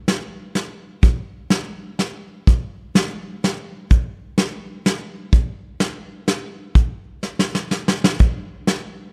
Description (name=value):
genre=alpine folk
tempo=126 BPM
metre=3/4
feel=straight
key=none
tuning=none
part: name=soft brush drum kit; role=drums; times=0.1-8.8 s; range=hi-hat, kick drum, snare drum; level=-19 LUFS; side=equal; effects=none
room=light reverb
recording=dark, warm production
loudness=-21 LUFS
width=mono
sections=0.0-8.2 A section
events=drum fill 7.2-8.2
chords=none